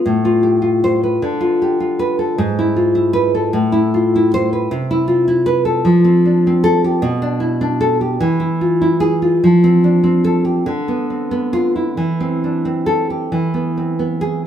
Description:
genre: romantic piece for solo classical guitar.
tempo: 44-53 BPM (dotted quarters).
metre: 6/8.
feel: rubato.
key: A minor.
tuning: A4 = 440 Hz.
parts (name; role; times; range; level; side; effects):
nylon-string guitar; solo; 0.0-14.5 s; G#2 to C5; -13 LUFS; equal; none.
room: wet stone room reverb, RT60 1.3 s.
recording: band playing live in one room.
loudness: -13 LUFS.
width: side -9 dB against mid.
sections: 0.0-14.5 A section.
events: none.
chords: 0.0 F/A; 1.2 Bdim/D; 2.4 E/G#; 3.5 Am; 4.7 Cmaj7; 5.8 F; 7.0 Bmadd11; 8.2 E; 9.4 F; 10.7 Bdim/D; 12.0 Am/E; 13.3 E.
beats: | 0.03 1.20 | 2.37 3.54 | 4.70 5.85 | 7.04 8.21 | 9.43 10.68 | 11.99 13.33.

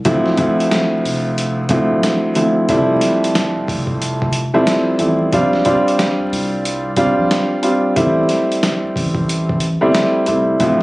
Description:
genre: hip hop, boom-bap hip-hop.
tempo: 91 BPM.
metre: 4/4.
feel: swing 62% on 16ths.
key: unclear.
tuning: A4 = 437 Hz.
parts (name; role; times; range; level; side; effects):
soft dub sub bass; bass; 0.0-10.8 s; D1 to C2; -23 LUFS; equal; none.
dark upright piano; accompaniment; 0.1-10.8 s; D2 to F4; -14 LUFS; equal; cassette tape.
boom bap sampler-style drum kit; drums; 0.1-10.8 s; hi-hat, kick drum, snare drum; -21 LUFS; equal; none.
room: light reverb.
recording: recorded on a phone in the room, studio reverb, vinyl crackle, compression.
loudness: -14 LUFS.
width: side -20 dB against mid.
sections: 0.0-10.6 A section.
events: none.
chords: 0.1 Dm9; 2.7 Fmaj7; 5.3 Bb6; 8.0 Am7.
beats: | 0.05 0.71 1.37 2.03 | 2.69 3.35 4.01 4.67 | 5.33 5.99 6.65 7.30 | 7.96 8.62 9.28 9.94 | 10.60.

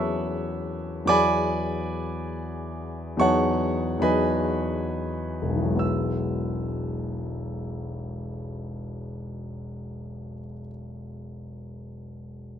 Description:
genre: classical, impressionist solo piano.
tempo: 32-46 BPM.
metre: 3/4.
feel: rubato.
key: E major.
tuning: A4 = 440 Hz.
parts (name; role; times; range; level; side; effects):
warm grand piano; solo; 0.0-12.6 s; E1 to F#6; -25 LUFS; equal; none.
room: little or no reverb.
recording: close, detailed microphones.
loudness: -24 LUFS.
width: side -9 dB against mid.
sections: 0.0-5.8 A section; 5.8-10.6 B section.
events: slowing down 0.0-5.8.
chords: 0.0 E69; 1.1 Eadd9; 3.2 G#m7/E; 5.8 Eadd9.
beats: | 1.09 2.46 4.03 | 5.81 7.42 9.02.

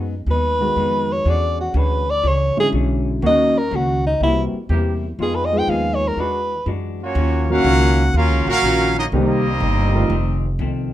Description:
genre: jazz.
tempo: 122 BPM.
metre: 4/4.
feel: swing 67% on 8ths.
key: Eb minor.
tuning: A4 = 438 Hz.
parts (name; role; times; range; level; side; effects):
vintage hollow-body jazz guitar; accompaniment; 0.0-10.9 s; F2 to C#5; -26 LUFS; left 3 dB; none.
mellow trombone section; sustained chords; 0.0-6.4 s; D3 to G4; -32 LUFS; equal; none.
upright bass; bass; 0.0-10.9 s; F1 to Gb2; -20 LUFS; equal; none.
breathy alto saxophone; melody; 0.3-6.7 s; Eb4 to G5; -19 LUFS; equal; none.
warm baby grand piano; accompaniment; 0.6-10.1 s; D3 to Ab4; -22 LUFS; equal; none.
clear trumpet section; melody; 7.0-10.6 s; Bb3 to Gb5; -21 LUFS; equal; none.
clear trombone section; second line; 7.0-10.6 s; F#3 to Gb4; -23 LUFS; right 3 dB; none.
room: moderate club reverb, RT60 0.8 s.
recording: dark, warm production.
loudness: -16 LUFS.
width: side -13 dB against mid.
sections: 0.0-7.2 A section; 7.2-10.9 B section.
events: alto saxophone solo 0.0-7.2.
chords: 0.0 Abm7; 1.3 E13; 3.2 Ebm7; 4.2 C7; 5.2 Fm7b5; 6.2 E9; 7.2 Ebm9; 9.1 Cm7; 10.1 F7.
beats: 0.28 0.77 | 1.26 1.75 2.24 2.73 | 3.23 3.72 4.21 4.70 | 5.19 5.68 6.18 6.67 | 7.16 7.65 8.14 8.63 | 9.12 9.61 10.11 10.60.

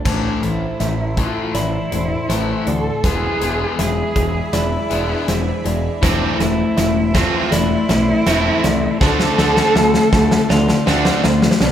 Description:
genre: post-rock.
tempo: 80 BPM.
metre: 4/4.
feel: straight.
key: A harmonic minor.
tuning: A4 = 440 Hz.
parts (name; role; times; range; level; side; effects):
evolving wavetable pad; sustained chords; 0.0-11.7 s; F4 to C6; -31 LUFS; right 1 dB; none.
mellow electric guitar; arpeggios; 0.0-11.7 s; B4 to E5; -29 LUFS; right 6 dB; spring reverb.
twelve-string electric guitar; arpeggios; 0.0-11.7 s; E2 to F4; -28 LUFS; left 2 dB; none.
distorted electric guitar; riff; 0.0-11.7 s; A2 to D4; -20 LUFS; left 6 dB; distortion.
muted cello; melody; 0.1-11.2 s; D4 to A4; -22 LUFS; right 2 dB; none.
growling picked electric bass; bass; 0.1-11.7 s; E1 to D2; -23 LUFS; equal; overdrive.
huge arena drum kit; drums; 0.1-11.7 s; crash cymbal, hi-hat, kick drum, snare drum; -20 LUFS; equal; none.
crunchy overdriven guitar; riff; 6.0-11.7 s; D3 to D4; -22 LUFS; right 8 dB; none.
room: wet recital hall reverb, RT60 1.9 s.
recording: recorded in a church or concert hall.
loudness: -15 LUFS.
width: side -10 dB against mid.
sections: 0.1-11.7 A section.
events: build-up 0.1-11.7; drum fill 0.1-11.7.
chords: 0.1 Am; 3.0 E7; 6.0 Am/E; 9.0 Dm7.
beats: | 0.06 0.80 1.55 2.30 | 3.04 3.79 4.54 5.28 | 6.03 6.78 7.52 8.27 | 9.01 9.76 10.50 11.24.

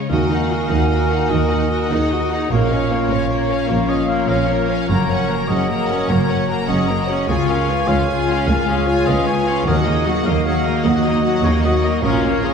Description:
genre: cinematic.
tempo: 101 BPM (dotted quarters).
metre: 12/8.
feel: straight.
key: unclear.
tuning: A4 = 439 Hz.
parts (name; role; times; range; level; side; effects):
warm symphonic violin section; second line; 0.0-12.5 s; C#4 to Db5; -29 LUFS; left 2 dB; none.
clear symphonic violin section; melody; 0.1-12.5 s; A#4 to A#5; -27 LUFS; left 5 dB; none.
hollow concert flute; second line; 0.1-12.5 s; D#5 to G#5; -28 LUFS; left 2 dB; none.
mellow clarinet; second line; 0.1-12.5 s; F#4 to C#5; -26 LUFS; right 4 dB; none.
warm oboe; second line; 0.1-12.5 s; A#4 to E#5; -26 LUFS; left 1 dB; none.
bright symphonic viola section; accompaniment; 0.1-12.5 s; F#3 to F#4; -24 LUFS; equal; none.
dark French horn section; sustained chords; 0.1-12.5 s; G#3 to F#4; -25 LUFS; left 4 dB; none.
concert harp; arpeggios; 0.1-12.5 s; F#2 to D#5; -26 LUFS; left 4 dB; none.
rich studio double bass section; bass; 0.1-12.5 s; F#1 to D#2; -22 LUFS; right 2 dB; none.
rich symphonic cello section; bass; 0.1-12.5 s; C#2 to D#3; -24 LUFS; right 2 dB; none.
room: wet scoring stage reverb, RT60 1.8 s.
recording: heard from further back in the room.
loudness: -15 LUFS.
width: side -6 dB against mid.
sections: 0.1-12.5 A section.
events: none.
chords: 0.1 D#m; 2.5 A#m; 4.9 F#; 7.3 C#; 9.7 D#m.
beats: | 0.10 0.70 1.30 1.91 | 2.50 3.10 3.71 4.30 | 4.90 5.50 6.09 6.69 | 7.28 7.88 8.47 9.07 | 9.66 10.26 10.85 11.45 | 12.04.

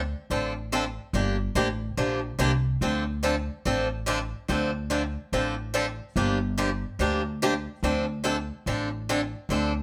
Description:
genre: acoustic string swing (jazz manouche).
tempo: 144 BPM.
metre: 4/4.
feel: swing 63% on 8ths.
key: D minor.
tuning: A4 = 436 Hz.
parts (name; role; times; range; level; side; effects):
upright bass; bass; 0.0-9.8 s; G1 to D2; -31 LUFS; equal; none.
picked swing-style acoustic guitar; accompaniment; 0.3-9.7 s; D3 to A4; -29 LUFS; equal; none.
room: light reverb.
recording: none.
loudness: -27 LUFS.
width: mono.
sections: 0.0-9.8 A section.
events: none.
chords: 0.0 Dm7; 1.1 Gm9; 2.8 Dm7; 6.2 Gm7; 7.8 Dm7.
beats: 0.30 0.72 | 1.14 1.55 1.97 2.39 | 2.81 3.23 3.64 4.06 | 4.48 4.90 5.32 5.73 | 6.15 6.57 6.99 7.41 | 7.82 8.24 8.66 9.08 | 9.49.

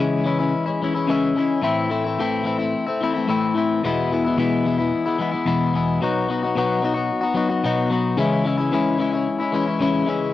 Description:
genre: rock.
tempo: 110 BPM.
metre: 4/4.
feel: straight.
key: unclear.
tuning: A4 = 439 Hz.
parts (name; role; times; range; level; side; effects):
crunchy overdriven guitar; solo; 0.0-10.3 s; E2 to F#4; -19 LUFS; left 3 dB; cassette tape.
room: moderate small room reverb, RT60 0.5 s.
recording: home recording on cassette.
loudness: -19 LUFS.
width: side -13 dB against mid.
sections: 0.0-10.3 A section.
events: none.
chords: 0.0 C#m; 1.6 Am; 3.8 E; 6.0 B; 8.2 C#m.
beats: 0.01 0.55 1.10 | 1.64 2.19 2.73 3.28 | 3.83 4.37 4.92 5.46 | 6.01 6.55 7.10 7.64 | 8.19 8.73 9.28 9.82.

